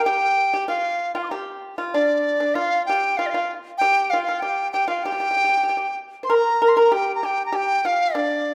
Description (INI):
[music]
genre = chinese traditional, Chinese chamber ensemble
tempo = 97 BPM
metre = 2/4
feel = rubato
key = G yu mode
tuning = A4 = 440 Hz
[part]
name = large dizi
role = melody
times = 0.0-8.5 s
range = D5 to D6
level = -23 LUFS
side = equal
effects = none
[part]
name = pipa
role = second line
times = 0.0-8.5 s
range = D4 to C5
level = -26 LUFS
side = equal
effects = none
[sound]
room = wet recital hall reverb, RT60 1.5 s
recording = none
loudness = -21 LUFS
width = mono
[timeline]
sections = 0.0-6.3 A section; 6.3-8.5 B section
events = none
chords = none